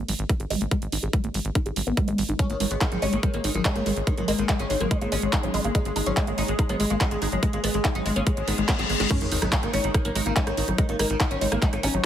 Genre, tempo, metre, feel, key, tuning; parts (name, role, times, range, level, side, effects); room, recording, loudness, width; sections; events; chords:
psychedelic trance; 143 BPM; 4/4; straight; G# minor; A4 = 440 Hz
woody wave-folded pluck; riff; 0.0-12.0 s; F#3 to G#4; -29 LUFS; equal; chorus, auto-pan, sidechain pumping, tape echo
tight sequencer bass; bass; 0.0-12.0 s; G#1; -29 LUFS; equal; tube saturation
drum and bass drum kit; drums; 0.1-12.0 s; crash cymbal, handclaps, hi-hat, rim click, snare drum; -30 LUFS; right 1 dB; overdrive
electronic kick drum; drums; 0.3-11.7 s; -23 LUFS; equal; overdrive
oud; melody; 2.4-12.1 s; D#3 to D#4; -30 LUFS; left 2 dB; phaser, sidechain pumping, ping-pong delay
pulsing gated texture; sustained chords; 2.4-12.1 s; G#3 to G#4; -31 LUFS; equal; chorus, built-in reverb, vintage 12-bit sampler grit, sidechain pumping
reverse cymbal, sub drop and zap; sound effects; 8.4-11.9 s; -31 LUFS; left 3 dB
light reverb, digital ambience; heavily compressed radio sound; -22 LUFS; side -10 dB against mid
0.0-9.1 A section; 9.1-12.1 B section
filter sweep on synth arpeggio sound 0.0-9.1; reverse cymbal 8.4-9.1; drum fill 8.7-9.1; drop 9.1-12.1; impact 9.1-10.8
0.0 G#5